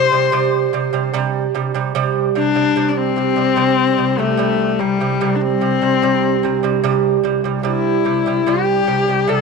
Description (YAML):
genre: mongolian traditional, Mongolian folk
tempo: 74 BPM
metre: 4/4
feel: straight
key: C gong mode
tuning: A4 = 443 Hz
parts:
  - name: bright horsehead fiddle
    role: melody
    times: 0.0-9.4 s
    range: G3 to C5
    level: -17 LUFS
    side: left 8 dB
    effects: none
  - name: lute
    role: arpeggios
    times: 0.0-9.4 s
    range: C3 to G3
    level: -18 LUFS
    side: right 10 dB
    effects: none
  - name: dark cello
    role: drone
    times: 2.0-9.4 s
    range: C2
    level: -24 LUFS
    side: left 2 dB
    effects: none
room: moderate plate reverb, RT60 3.1 s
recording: 1960s-style stereo with parts hard left and right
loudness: -15 LUFS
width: side -4 dB against mid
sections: 0.0-1.9 A section; 1.9-9.4 B section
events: none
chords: 0.0 C5